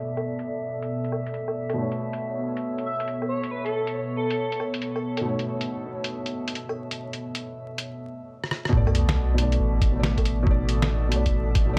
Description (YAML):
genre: future garage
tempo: 138 BPM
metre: 4/4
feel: swing 65% on 16ths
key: B minor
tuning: A4 = 440 Hz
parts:
  - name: felt-muted upright piano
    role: accompaniment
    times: 0.0-11.8 s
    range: B2 to D5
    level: -34 LUFS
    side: equal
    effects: vintage 12-bit sampler grit, sidechain pumping, analog delay
  - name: airy breathy pad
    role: sustained chords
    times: 0.0-11.8 s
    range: B2 to D5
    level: -35 LUFS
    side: equal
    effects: chorus, vintage 12-bit sampler grit, sidechain pumping
  - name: drifting glass-harmonics texture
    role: texture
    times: 0.0-11.8 s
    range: E5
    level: -41 LUFS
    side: equal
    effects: chorus, built-in reverb
  - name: lo-fi sampler-style drum kit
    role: drums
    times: 0.2-11.7 s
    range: hi-hat, rim click, snare drum, woodblock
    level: -32 LUFS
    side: equal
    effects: low-pass filter on hats, small room ambience, low-pass filter on perc, low-pass filter on snare
  - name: airy dreamy lead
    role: melody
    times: 2.9-4.6 s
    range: A4 to E5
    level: -32 LUFS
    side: equal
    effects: chorus, analog delay
  - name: warm sub bass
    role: bass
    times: 8.7-11.8 s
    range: A1 to B1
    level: -26 LUFS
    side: equal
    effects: sidechain pumping
  - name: electronic kick drum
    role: drums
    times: 8.7-11.7 s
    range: none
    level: -25 LUFS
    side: equal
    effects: small room ambience
  - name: sub drop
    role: sound effects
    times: 8.7-10.5 s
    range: none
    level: -31 LUFS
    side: equal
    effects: none
room: moderate plate reverb, RT60 1.2 s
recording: echo-heavy mix, vinyl crackle, low-pass filter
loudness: -26 LUFS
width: mono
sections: 0.0-8.7 A section; 8.7-11.8 B section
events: filter sweep on drum 0.0-8.7; filter sweep 0.0-8.7; drum fill 8.4-8.7; impact 8.7-10.5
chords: 0.0 Bm7; 1.8 A/B; 8.7 Bm7